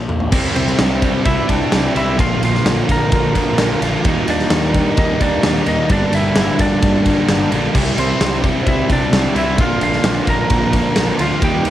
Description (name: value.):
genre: quiet-loud alternative rock.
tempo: 130 BPM.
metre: 4/4.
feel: straight.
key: unclear.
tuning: A4 = 442 Hz.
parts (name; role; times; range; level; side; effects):
thick fuzz guitar; riff; 0.0-11.7 s; G2 to G4; -22 LUFS; left 6 dB; distortion, cassette tape.
fuzz picked electric bass; bass; 0.0-11.7 s; G1 to Eb2; -23 LUFS; equal; overdrive.
big rock drum kit; drums; 0.1-11.7 s; crash cymbal, kick drum, ride cymbal, snare drum, toms; -18 LUFS; equal; cassette tape.
heavy high-gain guitar; riff; 0.3-11.7 s; G2 to F4; -24 LUFS; equal; distortion, cassette tape.
thick fuzz guitar; riff; 0.3-11.7 s; G2 to G4; -20 LUFS; right 6 dB; distortion, cassette tape.
lightly driven lead guitar; melody; 0.6-11.7 s; C4 to Bb5; -21 LUFS; equal; cassette tape.
room: light reverb.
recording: home recording on cassette.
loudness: -13 LUFS.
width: side -12 dB against mid.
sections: 0.3-11.7 A section.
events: drum fill 0.0-0.3.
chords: 0.3 C; 2.2 Bb; 4.0 Eb; 5.9 Gm; 7.7 C; 9.6 Bb.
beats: | 0.33 0.80 1.26 1.73 | 2.19 2.66 3.12 3.59 | 4.05 4.51 4.98 5.44 | 5.90 6.36 6.82 7.29 | 7.75 8.21 8.67 9.13 | 9.59 10.05 10.51 10.97 | 11.43.